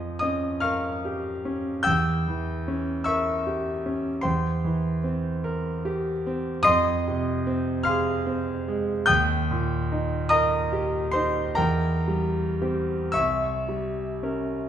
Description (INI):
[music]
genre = classical, romantic nocturne for solo piano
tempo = 35-52 BPM (dotted quarters)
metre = 12/8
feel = rubato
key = unclear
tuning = A4 = 435 Hz
[part]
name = clear concert grand piano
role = solo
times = 0.0-14.7 s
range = C2 to G6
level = -23 LUFS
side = equal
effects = none
[sound]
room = wet recital hall reverb, RT60 1.6 s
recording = recorded in a church or concert hall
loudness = -23 LUFS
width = side -9 dB against mid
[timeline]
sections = 0.0-14.7 A section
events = none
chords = 0.0 Gm7b5/F; 1.9 Edim7; 4.3 C7/E; 6.7 Fm; 9.1 Eb; 11.6 C7/E; 13.2 C7b9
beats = 0.64 | 1.87 3.08 4.25 5.45 | 6.67 7.87 9.08 10.31 | 11.58 13.15